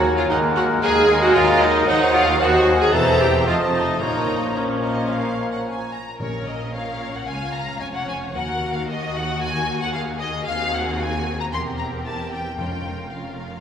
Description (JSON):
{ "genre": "quick classical-period movement for symphony orchestra", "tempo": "113 BPM", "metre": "4/4", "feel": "straight", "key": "Bb minor", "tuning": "A4 = 440 Hz", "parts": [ { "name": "warm studio violin section", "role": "melody", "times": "0.0-13.6 s", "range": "Db5 to C6", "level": "-27 LUFS", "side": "left 3 dB", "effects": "none" }, { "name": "clear clarinet", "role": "second line", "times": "0.0-5.9 s", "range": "Bb4 to C5", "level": "-30 LUFS", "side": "left 2 dB", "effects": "none" }, { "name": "mellow small flute group", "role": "second line", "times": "0.0-5.9 s", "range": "Gb5 to Bb5", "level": "-27 LUFS", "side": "right 1 dB", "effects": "none" }, { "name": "warm oboe", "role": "second line", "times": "0.0-5.9 s", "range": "Db5 to Ab5", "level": "-27 LUFS", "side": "equal", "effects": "none" }, { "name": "warm studio violin section", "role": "second line", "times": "0.0-13.6 s", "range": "F4 to Bb5", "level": "-29 LUFS", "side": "left 2 dB", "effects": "none" }, { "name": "mellow bassoon", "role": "accompaniment", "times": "0.0-5.9 s", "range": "E3 to Ab3", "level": "-26 LUFS", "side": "right 2 dB", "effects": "none" }, { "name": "rich studio viola section", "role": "accompaniment", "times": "0.0-13.6 s", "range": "Bb3 to Bb4", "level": "-23 LUFS", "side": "right 1 dB", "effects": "none" }, { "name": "clear French horn section", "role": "sustained chords", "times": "0.0-5.9 s", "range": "Eb3 to C4", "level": "-25 LUFS", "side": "left 2 dB", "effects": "none" }, { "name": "dark studio double bass section", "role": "bass", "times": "0.0-13.6 s", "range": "E1 to Eb2", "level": "-30 LUFS", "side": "right 1 dB", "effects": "none" }, { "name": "warm chamber cello section", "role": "bass", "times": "0.0-13.6 s", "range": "Db2 to Bb2", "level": "-29 LUFS", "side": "right 1 dB", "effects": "none" }, { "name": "timpani", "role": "percussion", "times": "4.0-7.0, 12.6-13.3 s", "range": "F2 to Bb2", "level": "-35 LUFS", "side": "equal", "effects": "none" } ], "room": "wet concert hall reverb, RT60 2.0 s", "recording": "recorded in a church or concert hall", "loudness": "-18 LUFS", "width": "side -8 dB against mid", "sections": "0.0-6.2 A section; 6.2-13.6 B section", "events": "none", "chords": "0.0 Ebm; 1.9 Cdim/Eb; 2.9 C7/E; 3.5 F7; 4.0 Bbm; 7.3 Db; 8.3 Ebm; 10.5 Cdim/Eb; 11.5 C7/E; 12.6 Bbm/F" }